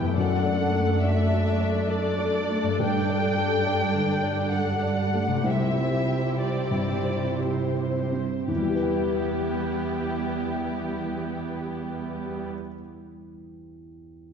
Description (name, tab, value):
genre	cinematic, emotional film score for orchestra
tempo	53-71 BPM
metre	3/4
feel	rubato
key	E minor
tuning	A4 = 440 Hz
part	muted studio violin section	melody	0.0-12.5 s	G4 to G5	-32 LUFS	left 2 dB	none
part	muted symphonic violin section	second line	0.0-12.5 s	E4 to D5	-32 LUFS	left 3 dB	none
part	felt-muted upright piano	accompaniment	0.0-14.3 s	C2 to G5	-29 LUFS	equal	none
part	muted studio viola section	accompaniment	0.0-12.5 s	G3 to E4	-32 LUFS	right 3 dB	none
part	concert harp	arpeggios	0.0-12.8 s	F#2 to G5	-32 LUFS	left 7 dB	none
part	muted studio cello section	bass	0.0-12.5 s	E2 to C3	-30 LUFS	right 3 dB	none
room	wet concert hall reverb, RT60 1.9 s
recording	dark, warm production, nothing above 7.7 kHz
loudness	-23 LUFS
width	side -7 dB against mid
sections	0.0-8.5 A section; 8.5-11.7 B section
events	slowing down 1.5-8.5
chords	0.2 D/F#; 2.8 Gsus2; 5.5 C; 8.5 Em